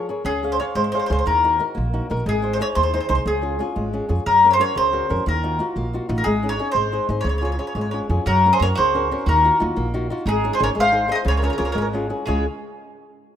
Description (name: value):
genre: italian folk, Italian serenade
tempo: 120 BPM (dotted quarters)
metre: 6/8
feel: rubato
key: Db major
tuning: A4 = 445 Hz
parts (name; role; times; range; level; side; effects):
- flamenco guitar; accompaniment; 0.0-12.5 s; Db3 to F5; -25 LUFS; left 2 dB; none
- upright bass; bass; 0.2-12.5 s; Ab1 to Gb2; -24 LUFS; right 1 dB; none
- mandolin; melody; 0.3-12.4 s; Ab4 to F5; -19 LUFS; left 1 dB; none
- mandolin; second line; 8.3-12.4 s; Eb4 to C5; -29 LUFS; right 6 dB; none
room: light reverb, small room ambience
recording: rough home demo mix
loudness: -18 LUFS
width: side -9 dB against mid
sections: 0.2-8.3 A section; 8.3-12.3 B section; 12.3-13.3 C section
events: none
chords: 0.2 Db; 1.3 Ebm; 2.3 Ab; 3.3 Db; 4.3 Gb; 5.3 Ebmadd9; 6.3 Absus4; 6.7 Ab; 7.2 Db; 8.3 Gb; 9.3 Ebmadd9; 10.3 Absus4; 10.8 Ab; 11.3 Db